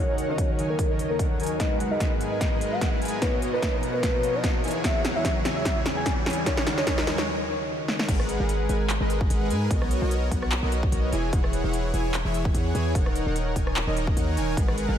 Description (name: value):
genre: future bass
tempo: 148 BPM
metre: 4/4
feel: swing 54% on 16ths, half-time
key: G# minor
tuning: A4 = 440 Hz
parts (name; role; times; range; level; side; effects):
- soft octave-layered synth lead; melody; 0.0-7.3 s; A#4 to G#5; -30 LUFS; equal; chorus, sidechain pumping, ping-pong delay
- glassy digital keys; accompaniment; 0.0-8.1 s; B2 to D#5; -34 LUFS; left 2 dB; chorus, sidechain pumping, ping-pong delay
- airy breathy pad; sustained chords; 0.0-8.1 s; D#2 to A#5; -37 LUFS; right 1 dB; chorus, sidechain pumping
- soft supersaw; riff; 0.0-15.0 s; D#3 to G#5; -29 LUFS; equal; sidechain pumping, low-pass filter, ping-pong delay
- riser; sound effects; 0.1-7.3 s; none; -36 LUFS; right 1 dB; none
- big-room dance drum kit; drums; 0.2-14.9 s; crash cymbal, handclaps, hi-hat, rim click, snare drum; -30 LUFS; equal; none
- electronic kick drum; drums; 0.4-14.7 s; none; -26 LUFS; equal; none
- warm 808-style bass; bass; 8.1-15.0 s; D#1 to G#2; -27 LUFS; equal; tube saturation, sidechain pumping
room: light reverb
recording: none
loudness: -22 LUFS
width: side -9 dB against mid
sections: 0.0-8.1 A section; 8.1-15.0 B section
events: build-up 0.0-8.1; filter sweep on supersaw synth 0.0-8.1; filter sweep on soft synth lead 0.0-8.1; riser 0.1-7.3; drum fill 1.6-7.3, 7.9; break 7.3-8.1; drop 8.1-15.0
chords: 0.0 D#m7; 1.6 G#m7; 3.2 Bmaj7; 4.6 E6; 6.5 D#m7; 8.1 G#m7; 9.7 Bmaj7; 11.1 E6; 13.0 D#m7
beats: 0.38 0.79 1.19 | 1.60 2.00 2.41 2.82 | 3.22 3.63 4.03 4.44 | 4.84 5.25 5.65 6.06 | 6.46 6.87 7.28 7.68 | 8.09 8.49 8.90 9.30 | 9.71 10.11 10.52 10.92 | 11.33 11.73 12.14 12.54 | 12.95 13.36 13.76 14.17 | 14.57 14.98